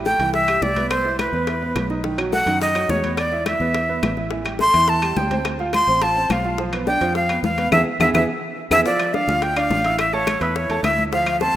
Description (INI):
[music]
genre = latin, salsa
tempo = 211 BPM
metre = 4/4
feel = straight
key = A minor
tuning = A4 = 440 Hz
[part]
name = clear baby grand piano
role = accompaniment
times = 0.0-11.5 s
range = D#3 to F6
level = -25 LUFS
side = right 3 dB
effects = none
[part]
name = fingered electric bass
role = bass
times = 0.0-11.5 s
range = A1 to F#2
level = -27 LUFS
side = equal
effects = none
[part]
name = breathy bright jazz flute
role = melody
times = 0.1-11.6 s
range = B4 to C6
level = -20 LUFS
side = equal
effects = none
[part]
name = bongos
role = percussion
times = 0.1-11.6 s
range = none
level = -30 LUFS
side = left 7 dB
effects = none
[part]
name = congas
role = percussion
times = 0.1-11.6 s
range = none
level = -30 LUFS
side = left 1 dB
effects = none
[part]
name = timbales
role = percussion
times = 0.2-11.4 s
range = none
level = -33 LUFS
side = right 3 dB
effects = none
[part]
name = claves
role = percussion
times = 0.5-11.4 s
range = none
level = -29 LUFS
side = left 5 dB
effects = none
[sound]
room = moderate lush hall reverb, RT60 2.4 s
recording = rough home demo mix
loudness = -17 LUFS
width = side -12 dB against mid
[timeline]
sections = 0.0-8.9 A section; 8.9-11.6 B section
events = drum fill 7.7-8.9; band accent 7.7-8.9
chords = 0.0 Am7; 0.9 Cmaj7; 2.0 B7; 3.2 E5; 4.3 Am7; 5.5 Dm7; 6.6 Bdim; 7.7 E; 8.9 Fmaj13; 10.0 A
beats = 0.06 0.34 0.62 | 0.91 1.19 1.48 1.76 | 2.04 2.33 2.61 2.90 | 3.18 3.46 3.75 4.03 | 4.32 4.60 4.88 5.17 | 5.45 5.74 6.02 6.30 | 6.59 6.87 7.15 7.44 | 7.72 8.01 8.29 8.57 | 8.86 9.14 9.42 9.71 | 9.99 10.27 10.56 10.84 | 11.12 11.41